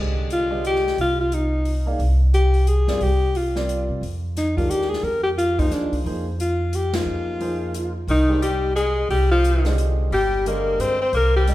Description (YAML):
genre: modal jazz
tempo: 177 BPM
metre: 3/4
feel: swing 62% on 8ths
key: C minor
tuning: A4 = 437 Hz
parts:
  - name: dark concert grand piano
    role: accompaniment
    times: 0.0-11.5 s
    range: D3 to F5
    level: -30 LUFS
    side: right 2 dB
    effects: none
  - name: upright bass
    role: bass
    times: 0.0-11.5 s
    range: G1 to C3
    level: -22 LUFS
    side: equal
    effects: none
  - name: mellow alto saxophone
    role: melody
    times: 0.3-11.5 s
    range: D4 to C5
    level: -22 LUFS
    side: left 1 dB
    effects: none
  - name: open jazz drum kit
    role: drums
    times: 0.3-11.5 s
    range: hi-hat, kick drum, ride cymbal, snare drum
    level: -31 LUFS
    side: equal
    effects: none
  - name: edgy tenor saxophone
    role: second line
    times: 8.1-11.5 s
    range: Eb3 to C4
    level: -28 LUFS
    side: left 3 dB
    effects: none
room: moderate recital hall reverb, RT60 1.7 s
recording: recorded in a church or concert hall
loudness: -18 LUFS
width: side -16 dB against mid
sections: 0.0-11.5 A section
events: band accent 6.9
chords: 0.0 Cm11; 4.0 Fm11; 8.1 Cm11